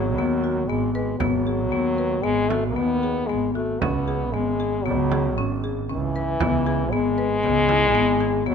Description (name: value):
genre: contemporary instrumental, chamber music in an uneven meter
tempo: 116 BPM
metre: 5/4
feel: straight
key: C# minor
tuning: A4 = 440 Hz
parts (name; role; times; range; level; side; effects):
- warm French horn; second line; 0.0-8.5 s; E3 to B3; -24 LUFS; left 3 dB; none
- marimba with medium mallets; arpeggios; 0.0-8.5 s; B3 to B4; -25 LUFS; left 6 dB; none
- rich double bass; bass; 0.0-8.5 s; G#1 to D#2; -26 LUFS; right 8 dB; none
- frame drum; percussion; 0.2-8.1 s; none; -28 LUFS; right 5 dB; none
room: moderate recital hall reverb, RT60 1.4 s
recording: close, detailed microphones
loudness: -20 LUFS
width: side -7 dB against mid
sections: 0.0-8.5 A section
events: none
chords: 0.0 G#m7; 3.8 C#m7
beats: 0.18 0.69 | 1.21 1.73 2.25 2.77 3.29 | 3.81 4.34 4.86 5.38 5.89 | 6.41 6.92 7.44 7.95 8.46